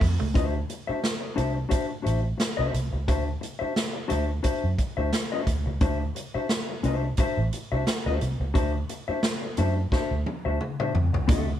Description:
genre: funk.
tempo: 88 BPM.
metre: 4/4.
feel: swing 56% on 16ths.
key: D mixolydian.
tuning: A4 = 440 Hz.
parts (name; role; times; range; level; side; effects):
mellow electric guitar; accompaniment; 0.0-11.5 s; C4 to E5; -29 LUFS; left 4 dB; none.
electric guitar at the edge of break-up; riff; 0.0-0.3, 11.3-11.4 s; A3 to D4; -34 LUFS; right 6 dB; none.
vintage muted fingered electric bass; bass; 0.0-11.6 s; A1 to F#2; -27 LUFS; right 1 dB; none.
swinging big-band drum kit; drums; 0.0-11.5 s; hi-hat, kick drum, snare drum, toms; -28 LUFS; equal; none.
room: moderate studio reverb, RT60 0.5 s.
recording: band playing live in one room.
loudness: -24 LUFS.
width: side -11 dB against mid.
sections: 0.3-11.3 A section.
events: drum fill 9.9-11.3.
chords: 0.3 D9.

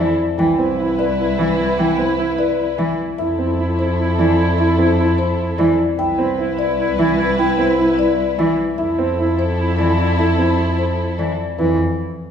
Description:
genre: classical, minimalist pattern music.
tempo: 300 BPM (eighths).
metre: 7/8.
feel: straight.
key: F lydian.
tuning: A4 = 441 Hz.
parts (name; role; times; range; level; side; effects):
marimba with soft mallets; melody; 0.0-11.8 s; B4 to G5; -24 LUFS; left 8 dB; none.
warm clarinet; second line; 0.0-11.3 s; E4; -22 LUFS; left 1 dB; none.
rich cello; accompaniment; 0.0-11.8 s; E3; -23 LUFS; equal; none.
warm symphonic string section; sustained chords; 0.0-11.3 s; E4 to B4; -24 LUFS; equal; none.
warm baby grand piano; arpeggios; 0.0-11.8 s; C4 to B4; -21 LUFS; right 3 dB; none.
rich double bass; bass; 0.0-11.8 s; C2 to F2; -21 LUFS; right 1 dB; none.
room: wet recital hall reverb, RT60 1.5 s.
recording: heard from further back in the room.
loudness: -15 LUFS.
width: side -8 dB against mid.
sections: 0.0-11.6 A section.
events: none.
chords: 0.4 Cmaj7; 3.2 Fmaj7; 6.0 Cmaj7; 8.8 Fmaj7; 11.6 E5.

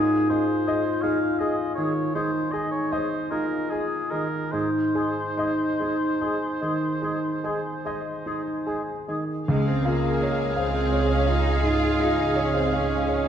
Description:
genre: classical, romantic movement for piano and orchestra.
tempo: 46-57 BPM (dotted quarters).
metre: 12/8.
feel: rubato.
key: Db major.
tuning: A4 = 440 Hz.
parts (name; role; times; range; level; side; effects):
warm concert grand piano; melody; 0.0-13.3 s; Db2 to F5; -26 LUFS; equal; none.
bright clarinet; second line; 0.0-13.3 s; Ab4; -36 LUFS; equal; none.
mellow large flute ensemble; second line; 0.0-13.0 s; Ab4 to Eb6; -36 LUFS; left 4 dB; none.
mellow oboe; second line; 0.0-13.3 s; Ab4 to F5; -32 LUFS; equal; none.
clear bassoon; accompaniment; 0.0-13.3 s; Ab3; -34 LUFS; right 3 dB; none.
mellow French horn section; sustained chords; 0.0-13.3 s; Eb4 to F5; -30 LUFS; left 3 dB; none.
warm studio violin section; melody; 9.5-13.3 s; F5; -36 LUFS; left 4 dB; none.
rich studio violin section; second line; 9.5-13.3 s; Ab4; -35 LUFS; left 4 dB; none.
rich studio viola section; accompaniment; 9.5-13.3 s; Ab4; -35 LUFS; right 1 dB; none.
clear chamber cello section; bass; 9.5-13.3 s; Ab3 to F4; -29 LUFS; right 3 dB; none.
warm chamber double bass section; bass; 9.5-13.3 s; Db2; -27 LUFS; right 3 dB; none.
room: wet concert hall reverb, RT60 2.3 s.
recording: dark, warm production.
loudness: -22 LUFS.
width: side -9 dB against mid.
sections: 0.0-9.5 A section; 9.5-13.3 B section.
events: none.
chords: 0.0 Ab; 9.5 Db.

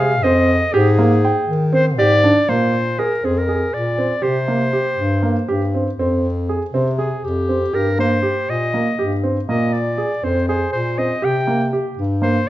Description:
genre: contemporary instrumental, chamber music in an uneven meter.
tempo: 240 BPM (eighths).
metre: 7/8.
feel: straight.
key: Bb mixolydian.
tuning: A4 = 441 Hz.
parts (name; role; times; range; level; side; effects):
warm clarinet; melody; 0.0-12.5 s; G4 to G5; -20 LUFS; left 1 dB; none.
dark grand piano; arpeggios; 0.0-12.3 s; Bb3 to G5; -20 LUFS; right 2 dB; none.
mellow bass clarinet; bass; 0.0-12.5 s; F2 to Eb3; -20 LUFS; left 1 dB; none.
room: moderate recital hall reverb, RT60 1.5 s.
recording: nothing above 7.6 kHz.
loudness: -16 LUFS.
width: side -15 dB against mid.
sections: 0.0-2.5 A section; 2.5-12.5 B section.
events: none.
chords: 0.0 Fm7; 0.7 Abmaj7(no3); 2.5 Bbsus2; 4.2 C5; 6.0 Fmadd9; 7.7 Eb6/G; 9.5 Bbsus2; 11.2 C5.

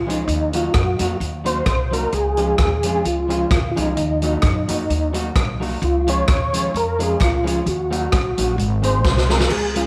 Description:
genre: ska.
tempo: 130 BPM.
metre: 4/4.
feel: swing 56% on 8ths.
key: Db major.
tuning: A4 = 436 Hz.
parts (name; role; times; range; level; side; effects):
mellow tonewheel organ; melody; 0.0-9.9 s; Eb4 to Db5; -24 LUFS; equal; chorus vibrato, slow rotary speaker.
upright bass; bass; 0.0-9.9 s; Ab1 to Gb2; -25 LUFS; equal; none.
electric guitar at the edge of break-up; accompaniment; 0.1-9.9 s; F3 to Ab4; -29 LUFS; equal; slapback echo.
swinging big-band drum kit; drums; 0.1-9.9 s; crash cymbal, hi-hat, kick drum, rim click, snare drum; -24 LUFS; equal; slapback echo.
group handclap; percussion; 0.8-9.2 s; none; -42 LUFS; equal; none.
room: moderate echo chamber reverb, RT60 2.3 s.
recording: none.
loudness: -19 LUFS.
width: mono.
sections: 0.0-9.5 A section.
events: drum fill 9.1-9.5.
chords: 0.3 Ebm; 2.1 Db; 4.0 Ebm; 5.8 Db; 7.7 Ebm; 8.6 Ab.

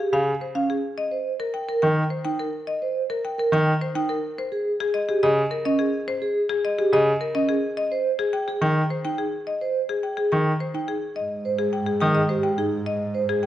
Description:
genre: classical, minimalist pattern music.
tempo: 106 BPM.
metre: 3/4.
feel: straight.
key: unclear.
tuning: A4 = 439 Hz.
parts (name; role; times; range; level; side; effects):
marimba with hard mallets; melody; 0.0-13.5 s; Ab4 to G5; -26 LUFS; left 3 dB; none.
vibraphone with soft mallets; arpeggios; 0.0-13.3 s; Db4 to C5; -25 LUFS; right 4 dB; none.
bright grand piano; accompaniment; 0.1-12.2 s; Db3 to Eb3; -22 LUFS; equal; none.
rich studio double bass section; bass; 11.2-13.5 s; Ab2; -28 LUFS; right 2 dB; none.
xylophone with rubber mallets; arpeggios; 12.0-12.2 s; Eb6; -28 LUFS; left 2 dB; none.
room: moderate recital hall reverb, RT60 1.4 s.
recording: worn, warbling old tape, cassette tape, warbly pitch drift.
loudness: -21 LUFS.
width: side -12 dB against mid.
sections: 0.0-11.2 A section; 11.2-13.5 B section.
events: none.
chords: 0.0 Db; 1.0 Cm7; 4.4 Bbm11 (rootless); 7.8 Ebadd11; 11.2 Ab.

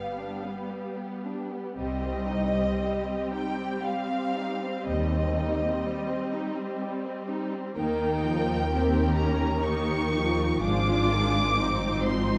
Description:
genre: classical, slow romantic movement for string orchestra.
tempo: 56-66 BPM.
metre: 3/4.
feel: rubato.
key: C minor.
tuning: A4 = 440 Hz.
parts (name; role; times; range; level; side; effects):
rich symphonic violin section; melody; 0.0-12.4 s; Eb5 to D6; -34 LUFS; equal; none.
warm symphonic violin section; second line; 0.0-12.4 s; G3 to C5; -35 LUFS; equal; none.
rich symphonic viola section; accompaniment; 0.0-12.4 s; Eb3 to Eb4; -34 LUFS; equal; none.
rich symphonic double bass section; bass; 1.8-12.4 s; Ab1 to Eb2; -34 LUFS; equal; none.
warm symphonic cello section; bass; 1.8-12.4 s; C2 to Ab2; -34 LUFS; equal; none.
room: moderate recital hall reverb, RT60 1.4 s.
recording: dark, warm production.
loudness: -28 LUFS.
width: mono.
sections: 0.0-12.4 A section.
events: none.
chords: 0.0 G7; 1.8 Cm; 4.9 Cm/Eb; 7.8 Eb7; 10.6 Ab.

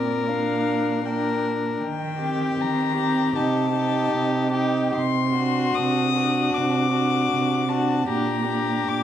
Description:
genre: classical, slow romantic movement for string quartet.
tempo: 77 BPM.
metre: 4/4.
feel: rubato.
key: G minor.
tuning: A4 = 440 Hz.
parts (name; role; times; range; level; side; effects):
dark violin; melody; 0.0-9.0 s; D5 to Eb6; -27 LUFS; left 8 dB; none.
rich violin; second line; 0.0-9.0 s; F#4 to Bb4; -27 LUFS; left 4 dB; none.
dark viola; accompaniment; 0.0-9.0 s; C4 to Eb4; -27 LUFS; right 2 dB; none.
warm cello; bass; 0.0-9.0 s; Bb2 to Eb3; -25 LUFS; right 4 dB; none.
room: wet recital hall reverb, RT60 1.6 s.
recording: dark, warm production.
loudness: -20 LUFS.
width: side -10 dB against mid.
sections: 0.0-9.0 A section.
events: none.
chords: 0.0 Gm/Bb; 1.8 Cm/Eb; 3.4 Cm; 5.0 D7/C; 8.1 Gm/Bb.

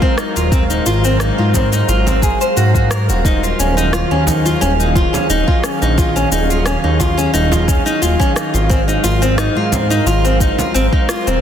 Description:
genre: organic downtempo.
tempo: 88 BPM.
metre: 4/4.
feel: swing 53% on 16ths.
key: Eb dorian.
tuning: A4 = 440 Hz.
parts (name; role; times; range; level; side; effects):
airy breathy pad; sustained chords; 0.0-11.4 s; Eb3 to F5; -20 LUFS; equal; chorus, sidechain pumping, shimmer reverb.
nylon-string guitar; arpeggios; 0.0-11.4 s; C4 to C5; -17 LUFS; left 1 dB; ping-pong delay, shimmer reverb.
electronic kick drum; drums; 0.0-11.1 s; none; -16 LUFS; equal; none.
electronic rim click and shaker; drums; 0.2-11.4 s; none; -24 LUFS; left 2 dB; soft clipping on snare.
smooth synth bass; bass; 0.4-11.4 s; Eb1 to Ab2; -16 LUFS; equal; sidechain pumping.
frame drum; percussion; 1.6-10.7 s; none; -25 LUFS; right 3 dB; none.
room: moderate echo chamber reverb, RT60 2.3 s.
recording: dense, heavily limited modern master.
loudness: -12 LUFS.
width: side -9 dB against mid.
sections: 0.0-11.4 A section.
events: none.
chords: 0.0 Ab13; 3.2 Ebm11; 8.7 Ab13.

